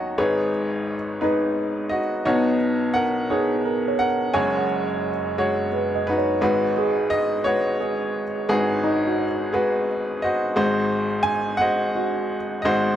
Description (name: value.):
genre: folk.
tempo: 58 BPM (dotted quarters).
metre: 6/8.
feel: straight.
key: G# minor.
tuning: A4 = 440 Hz.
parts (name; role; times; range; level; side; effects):
bright upright piano; melody; 0.0-13.0 s; F#1 to G#5; -21 LUFS; left 1 dB; none.
felt-muted upright piano; arpeggios; 0.0-13.0 s; C#4 to F#5; -27 LUFS; right 4 dB; tape echo.
room: little or no reverb.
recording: close, detailed microphones.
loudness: -20 LUFS.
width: side -10 dB against mid.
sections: 0.0-6.4 A section; 6.4-13.0 B section.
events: none.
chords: 0.2 G#m; 2.3 Badd9; 4.3 F#sus2; 6.4 G#m7; 10.6 G#7.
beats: | 0.18 1.22 | 2.26 3.30 | 4.33 5.37 | 6.41 7.45 | 8.49 9.53 | 10.56 11.60 | 12.63.